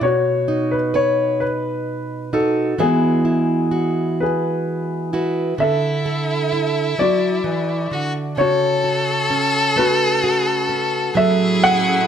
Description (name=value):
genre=acoustic folk-pop ballad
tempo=43 BPM (dotted quarters)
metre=6/8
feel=straight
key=unclear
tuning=A4 = 440 Hz
part: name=dark baby grand piano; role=melody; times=0.0-12.1 s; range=B3 to F#5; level=-20 LUFS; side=left 2 dB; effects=none
part: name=fingerpicked plugged-in steel-string acoustic guitar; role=accompaniment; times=0.0-12.1 s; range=B2 to B4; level=-21 LUFS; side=right 3 dB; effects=none
part: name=clear violin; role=second line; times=5.6-12.1 s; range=E4 to A4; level=-21 LUFS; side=left 2 dB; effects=none
part: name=warm studio string section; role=sustained chords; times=11.2-12.1 s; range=A2 to E4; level=-26 LUFS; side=left 3 dB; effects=none
room=light reverb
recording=none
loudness=-16 LUFS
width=side -8 dB against mid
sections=0.0-5.6 A section; 5.6-12.1 B section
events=none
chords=0.0 B; 2.8 Eadd9; 5.6 Dadd9; 8.4 A6/C#; 11.2 F#m7